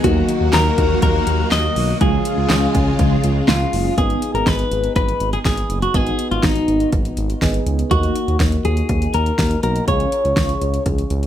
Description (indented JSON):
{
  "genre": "synth-pop",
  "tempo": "122 BPM",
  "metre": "4/4",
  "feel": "straight",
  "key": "G# dorian",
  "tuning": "A4 = 439 Hz",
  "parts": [
    { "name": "clean electric guitar", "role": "melody", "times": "0.0-10.8 s", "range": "D#4 to D#5", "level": "-21 LUFS", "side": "left 2 dB", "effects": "phaser, tape echo" },
    { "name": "soft electric-piano-like synth keys", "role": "accompaniment", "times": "0.0-11.3 s", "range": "E#3 to G#4", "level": "-25 LUFS", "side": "equal", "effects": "chorus, phaser" },
    { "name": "string machine, violins", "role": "sustained chords", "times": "0.0-4.0 s", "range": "C#3 to F#4", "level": "-22 LUFS", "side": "equal", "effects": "ensemble chorus" },
    { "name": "smooth synth bass", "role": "bass", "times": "0.0-11.3 s", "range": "F#1 to D#2", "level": "-20 LUFS", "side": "equal", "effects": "none" },
    { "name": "deep house drum kit", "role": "drums", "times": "0.0-11.3 s", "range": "handclaps, hi-hat, kick drum, snare drum", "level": "-20 LUFS", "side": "equal", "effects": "overdrive" }
  ],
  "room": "moderate studio reverb, RT60 0.5 s",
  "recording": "none",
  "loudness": "-15 LUFS",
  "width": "side -11 dB against mid",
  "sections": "0.0-4.0 A section; 4.0-11.3 B section",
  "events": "none",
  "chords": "0.0 D#m; 2.0 C#; 4.0 G#m; 7.9 D#m; 9.9 C#"
}